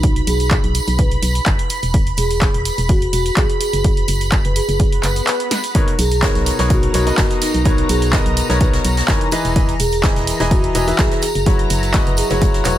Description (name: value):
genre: piano house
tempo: 126 BPM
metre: 4/4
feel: swing 54% on 16ths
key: B major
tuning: A4 = 438 Hz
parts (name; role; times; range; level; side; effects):
- analog string pad; sustained chords; 0.0-12.8 s; A#5 to B5; -26 LUFS; right 1 dB; ensemble chorus, sidechain pumping
- organ-like FM bass; bass; 0.0-12.8 s; E1 to B1; -20 LUFS; equal; sidechain pumping
- electronic kick drum; drums; 0.0-12.5 s; none; -17 LUFS; equal; none
- punchy analog drum machine; drums; 0.0-12.8 s; handclaps, hi-hat, snare drum; -23 LUFS; right 1 dB; none
- tambourine; percussion; 0.0-12.8 s; none; -30 LUFS; right 2 dB; none
- marimba with soft mallets; melody; 0.3-12.7 s; D#4 to B4; -23 LUFS; right 1 dB; tape echo
- swell; sound effects; 5.0-5.8 s; none; -26 LUFS; left 3 dB; none
- bright grand piano; riff; 5.8-12.8 s; B2 to E5; -21 LUFS; left 2 dB; sidechain pumping
- jazz brush drum kit; drums; 5.8-12.8 s; hi-hat, snare drum; -30 LUFS; right 3 dB; sidechain pumping on hats, high-pass filter on hats, high-pass filter on snare, high-pass filter on room
room: little or no reverb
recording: none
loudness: -14 LUFS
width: side -12 dB against mid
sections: 0.0-12.8 A section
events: swell 5.0-5.8; drum fill 5.5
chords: 0.0 B5; 1.7 E5; 3.6 F#sus4; 5.8 Bmaj9; 9.3 Emaj7; 11.2 F#7sus4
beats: | 0.04 0.51 0.99 1.46 | 1.94 2.42 2.89 3.37 | 3.85 4.32 4.80 5.27 | 5.75 6.23 6.70 7.18 | 7.65 8.13 8.61 9.08 | 9.56 10.04 10.51 10.99 | 11.46 11.94 12.42